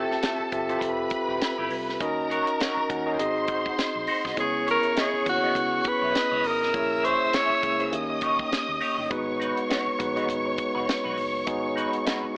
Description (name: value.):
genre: lush 1970s-style soul.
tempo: 101 BPM.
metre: 4/4.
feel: swing 58% on 16ths.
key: G# minor.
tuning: A4 = 440 Hz.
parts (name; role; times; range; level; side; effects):
rich studio string section; second line; 0.0-12.4 s; A4 to E6; -30 LUFS; equal; none.
tine electric piano; accompaniment; 0.0-12.4 s; G#3 to F#5; -28 LUFS; equal; medium stereo tremolo.
electric guitar through a small old amp; riff; 0.0-12.2 s; A3 to D#5; -31 LUFS; equal; wah, phaser.
vintage muted fingered electric bass; bass; 0.0-12.3 s; E1 to D#2; -45 LUFS; equal; none.
tight funk drum kit; drums; 0.1-12.2 s; hi-hat, kick drum, snare drum; -30 LUFS; equal; none.
breathy tenor saxophone; melody; 4.4-7.9 s; F#4 to C#5; -24 LUFS; equal; none.
room: light reverb, small room ambience.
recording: AM radio sound.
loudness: -23 LUFS.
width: side -33 dB against mid.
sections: 0.0-12.4 A section.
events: none.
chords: 0.0 Fmaj9; 2.0 D#m7; 3.2 G#7; 4.4 C#m7; 6.7 A#m7b5; 7.9 D#7; 9.1 G#m7.